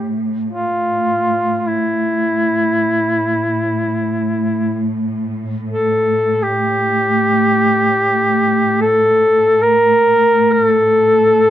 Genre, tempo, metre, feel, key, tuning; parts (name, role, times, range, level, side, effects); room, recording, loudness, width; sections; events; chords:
caucasian folk, Caucasian lament; free time; A4 = 441 Hz
clear duduk; melody; 0.0-11.5 s; E4 to Bb4; -14 LUFS; equal
rich symphonic string section; drone; 0.0-11.5 s; A2; -20 LUFS; right 1 dB; stereo widening
studio reverb; dry, close 1970s-style studio recording; -13 LUFS; side -11 dB against mid
0.0-11.5 A section